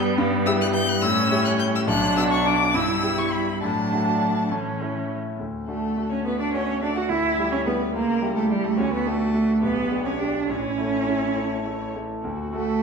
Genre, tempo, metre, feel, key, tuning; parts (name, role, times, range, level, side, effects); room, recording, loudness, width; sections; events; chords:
quick classical-period movement for piano quartet; 70 BPM (dotted quarters); 6/8; rubato; D major; A4 = 440 Hz
rich cello; second line; 0.0-12.8 s; E3 to F#4; -26 LUFS; right 3 dB
bright concert grand piano; accompaniment; 0.0-12.8 s; A1 to A4; -26 LUFS; left 2 dB
clear viola; accompaniment; 0.0-12.8 s; G3 to G4; -28 LUFS; right 3 dB
clear violin; melody; 0.5-12.8 s; G4 to G6; -28 LUFS; left 4 dB
wet recital hall reverb, RT60 1.6 s; heard from further back in the room; -21 LUFS; side -5 dB against mid
0.0-5.4 A section; 5.4-12.8 B section
0.2 Em/G; 1.0 A7; 1.9 Bm; 2.7 Em/G; 3.6 D/A; 4.5 A; 5.4 D; 7.1 Em7/D; 7.9 C#dim7; 8.8 D; 9.6 G/B; 10.5 A; 12.2 D